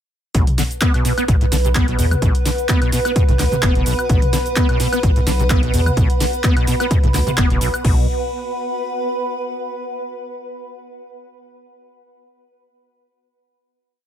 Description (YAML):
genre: acid house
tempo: 128 BPM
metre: 4/4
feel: swing 54% on 16ths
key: unclear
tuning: A4 = 440 Hz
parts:
  - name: warbly tape-like pad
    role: sustained chords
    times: 0.8-7.9 s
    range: B4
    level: -27 LUFS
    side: equal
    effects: chorus, built-in reverb, sidechain pumping
  - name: acid bass, saw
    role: riff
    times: 0.3-8.1 s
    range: A2 to B3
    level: -22 LUFS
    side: equal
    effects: overdrive, ensemble chorus, sidechain pumping, ping-pong delay
  - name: round analog bass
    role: bass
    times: 0.3-8.1 s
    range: F#1 to E2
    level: -20 LUFS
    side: equal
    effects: tube saturation, sidechain pumping
  - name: electro analog drum machine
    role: drums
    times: 0.3-7.9 s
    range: crash cymbal, handclaps, hi-hat, shaker, snare drum, toms, woodblock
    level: -23 LUFS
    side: equal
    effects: none
  - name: electronic kick drum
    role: drums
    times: 0.3-7.9 s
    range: none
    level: -17 LUFS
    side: equal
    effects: none
  - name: granular cloud pad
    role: texture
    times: 1.5-9.7 s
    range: B4 to B5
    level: -25 LUFS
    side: right 2 dB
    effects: built-in reverb, sidechain pumping
room: light reverb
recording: none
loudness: -15 LUFS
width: side -10 dB against mid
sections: 0.3-7.8 drop; 7.8-9.7 final chord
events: drop 0.3-7.8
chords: 0.3 B5